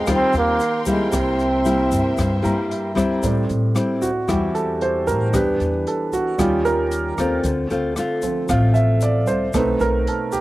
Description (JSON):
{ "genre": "bossa nova", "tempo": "114 BPM", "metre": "4/4", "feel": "straight", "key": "A minor from 3.2 s", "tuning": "A4 = 441 Hz", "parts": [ { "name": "warm trombone", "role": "melody", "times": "0.0-2.7 s", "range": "Ab3 to C4", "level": "-20 LUFS", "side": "right 1 dB", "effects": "none" }, { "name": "nylon-string guitar", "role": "accompaniment", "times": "0.0-10.4 s", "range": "G2 to G4", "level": "-22 LUFS", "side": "left 2 dB", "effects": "slapback echo" }, { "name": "warm concert grand piano", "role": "accompaniment", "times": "0.0-10.4 s", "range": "F3 to Bb5", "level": "-23 LUFS", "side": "right 3 dB", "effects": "none" }, { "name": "warm symphonic string section", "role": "sustained chords", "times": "0.0-3.2 s", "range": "Bb4 to C6", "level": "-30 LUFS", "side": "left 1 dB", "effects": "none" }, { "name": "upright bass", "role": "bass", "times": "0.0-10.0 s", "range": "A1 to A2", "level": "-23 LUFS", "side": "equal", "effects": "none" }, { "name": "open jazz drum kit", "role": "drums", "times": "0.1-10.4 s", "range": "hi-hat, kick drum, rim click", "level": "-29 LUFS", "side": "equal", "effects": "none" }, { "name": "tube shaker", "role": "percussion", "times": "0.1-10.4 s", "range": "none", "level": "-38 LUFS", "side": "left 5 dB", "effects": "none" } ], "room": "little or no reverb", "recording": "recorded outdoors, with no room sound", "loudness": "-17 LUFS", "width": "side -17 dB against mid", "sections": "0.0-3.2 A section; 3.2-10.4 B section", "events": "grand piano fill 2.2-3.2; grand piano solo 3.2-10.4", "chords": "0.0 Abmaj13; 1.1 C7; 3.2 Am7; 5.3 Em7; 6.4 D#9; 7.4 Dm7; 9.5 B7b9" }